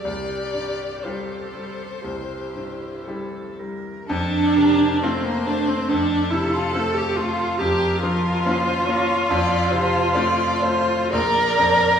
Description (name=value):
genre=classical, slow romantic movement for piano quartet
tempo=57-71 BPM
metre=4/4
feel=rubato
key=F major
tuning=A4 = 442 Hz
part: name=rich violin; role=melody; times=0.0-12.0 s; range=A4 to D5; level=-28 LUFS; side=left 4 dB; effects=none
part: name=rich cello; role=second line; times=0.0-12.0 s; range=Bb3 to Bb4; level=-26 LUFS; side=right 3 dB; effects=none
part: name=bright grand piano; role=accompaniment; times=0.0-12.0 s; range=Bb1 to G4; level=-25 LUFS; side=left 1 dB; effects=none
part: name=clear viola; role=accompaniment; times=0.0-12.0 s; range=Bb3 to Bb4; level=-22 LUFS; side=right 1 dB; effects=none
room=wet recital hall reverb, RT60 1.5 s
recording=heard from further back in the room, small room ambience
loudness=-18 LUFS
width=side -8 dB against mid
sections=0.0-4.1 A section; 4.1-12.0 B section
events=none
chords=0.0 Csus4; 2.0 C; 4.1 F; 7.6 Bbm/F; 9.3 F; 11.1 Bb